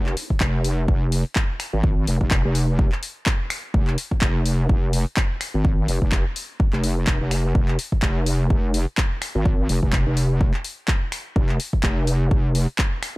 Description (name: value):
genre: bass house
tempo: 126 BPM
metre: 4/4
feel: swing 57% on 16ths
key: F minor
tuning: A4 = 440 Hz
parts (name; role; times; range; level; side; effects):
- wobble bass; bass; 0.0-12.7 s; F1 to Ab1; -21 LUFS; equal; chorus, overdrive, sidechain pumping
- house drum kit; drums; 0.1-13.1 s; finger snaps, handclaps, hi-hat; -28 LUFS; left 1 dB; none
- electronic kick drum; drums; 0.3-12.9 s; none; -20 LUFS; equal; none
room: little or no reverb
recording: dark, warm production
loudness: -19 LUFS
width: side -21 dB against mid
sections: 0.0-13.2 A section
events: none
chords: none